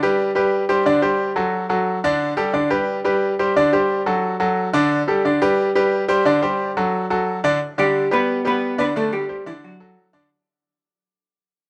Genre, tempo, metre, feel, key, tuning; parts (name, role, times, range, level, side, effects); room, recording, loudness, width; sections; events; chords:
latin; 178 BPM; 4/4; straight; G major; A4 = 441 Hz
bright grand piano; accompaniment; 0.0-10.3 s; D3 to D5; -20 LUFS; equal
vintage hollow-body jazz guitar; melody; 7.8-9.9 s; E3 to B4; -23 LUFS; equal
light reverb; -19 LUFS; mono
0.0-7.6 A section; 7.6-10.3 B section
fade-out 7.6-10.3
0.2 Gadd11; 0.9 Csus2; 1.5 D; 2.2 Gadd9; 2.9 Gadd11; 3.6 Csus2; 4.2 D; 4.9 Gadd9; 5.6 Gadd11; 6.3 Csus2; 6.9 D; 7.6 G/D; 9.0 Csus2; 9.6 D